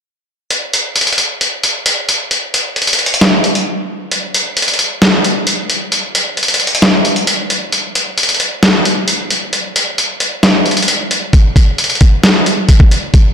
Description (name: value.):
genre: hip hop.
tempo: 133 BPM.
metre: 4/4.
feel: half-time.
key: none.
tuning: none.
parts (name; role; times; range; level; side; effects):
dusty soul sampler-style drum kit; drums; 0.5-13.2 s; hi-hat, kick drum, snare drum; -10 LUFS; equal; none.
room: moderate lush hall reverb, RT60 2.4 s.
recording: blown-out, overdriven recording, overdrive.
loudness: -10 LUFS.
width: side -8 dB against mid.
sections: 0.5-4.1 A section; 4.1-13.3 B section.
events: break 3.7-4.1; kick muted 4.1-11.3.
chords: none.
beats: | 0.51 0.96 1.41 1.86 | 2.31 2.76 3.21 3.66 | 4.12 4.57 5.02 5.47 | 5.92 6.37 6.82 7.27 | 7.72 8.18 8.63 9.08 | 9.53 9.98 10.43 10.88 | 11.33 11.78 12.24 12.69 | 13.14.